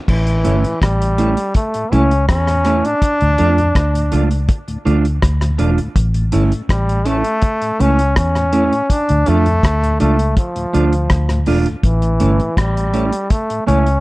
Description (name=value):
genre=roots reggae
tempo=82 BPM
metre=4/4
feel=straight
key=unclear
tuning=A4 = 440 Hz
part: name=brilliant trombone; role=melody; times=0.1-14.0 s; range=E3 to D4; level=-18 LUFS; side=left 1 dB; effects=none
part: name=vintage muted fingered electric bass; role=bass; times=0.1-14.0 s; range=E1 to F2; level=-16 LUFS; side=equal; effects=none
part: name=cloth-damped thuddy drum kit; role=drums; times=0.1-14.0 s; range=crash cymbal, hi-hat, kick drum, rim click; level=-18 LUFS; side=equal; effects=none
part: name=mellow tonewheel organ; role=accompaniment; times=0.3-13.8 s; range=D2 to D4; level=-25 LUFS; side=left 2 dB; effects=slow rotary speaker
part: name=mellow electric guitar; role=accompaniment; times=0.4-13.9 s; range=A3 to F4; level=-19 LUFS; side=right 4 dB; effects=none
room=light reverb, small room ambience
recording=none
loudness=-13 LUFS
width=side -20 dB against mid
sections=0.1-14.0 A section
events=none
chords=0.1 A; 3.0 Dm; 6.0 A; 8.9 Dm; 11.8 A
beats=| 0.08 0.82 1.55 2.29 | 3.02 3.75 4.49 5.22 | 5.96 6.70 7.43 8.16 | 8.90 9.63 10.37 11.10 | 11.84 12.57 13.31